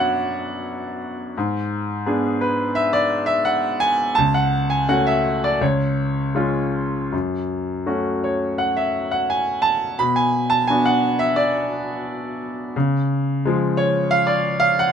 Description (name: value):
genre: classical, lyrical solo piano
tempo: 77-89 BPM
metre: 4/4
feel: rubato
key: F# minor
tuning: A4 = 440 Hz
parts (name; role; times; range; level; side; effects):
- bright grand piano; solo; 0.0-14.9 s; C#2 to B5; -18 LUFS; equal; none
room: little or no reverb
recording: close, detailed microphones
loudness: -18 LUFS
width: side -8 dB against mid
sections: 0.0-14.9 A section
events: none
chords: 0.0 Bm/F#; 1.4 G#dim; 4.2 F#m/C#; 5.6 C#; 7.1 F#m; 10.0 Bm; 12.8 C#